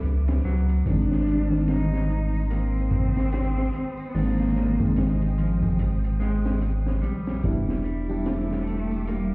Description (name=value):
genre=trip hop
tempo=73 BPM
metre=4/4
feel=swing 60% on 16ths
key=unclear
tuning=A4 = 441 Hz
part: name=warm cello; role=melody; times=0.0-9.3 s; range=G3 to Eb4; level=-29 LUFS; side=equal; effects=none
part: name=reed electric piano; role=accompaniment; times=0.0-9.3 s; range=Eb3 to F#4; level=-28 LUFS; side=equal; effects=fast tremolo
part: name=warm symphonic string section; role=sustained chords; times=0.0-9.3 s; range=G4 to Eb6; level=-43 LUFS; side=right 1 dB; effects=none
part: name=round analog bass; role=bass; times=0.0-9.3 s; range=E1 to C#2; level=-25 LUFS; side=equal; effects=tube saturation
part: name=crunchy breakbeat drum kit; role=drums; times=0.0-9.3 s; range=hi-hat, kick drum, snare drum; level=-29 LUFS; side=equal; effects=none
part: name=tambourine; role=percussion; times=0.0-9.3 s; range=none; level=-69 LUFS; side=right 2 dB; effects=none
part: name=clean electric guitar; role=arpeggios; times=0.4-9.3 s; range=F3 to G4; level=-33 LUFS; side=left 1 dB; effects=vintage 12-bit sampler grit, tape echo
room=small room ambience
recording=heard muffled through a wall, stone room reverb, vinyl crackle, EQ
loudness=-22 LUFS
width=side -26 dB against mid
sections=0.0-9.3 A section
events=none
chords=0.0 Bm; 0.9 Ab; 7.4 Em7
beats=0.04 | 0.86 1.68 2.50 3.33 | 4.15 4.97 5.79 6.61 | 7.43 8.26 9.08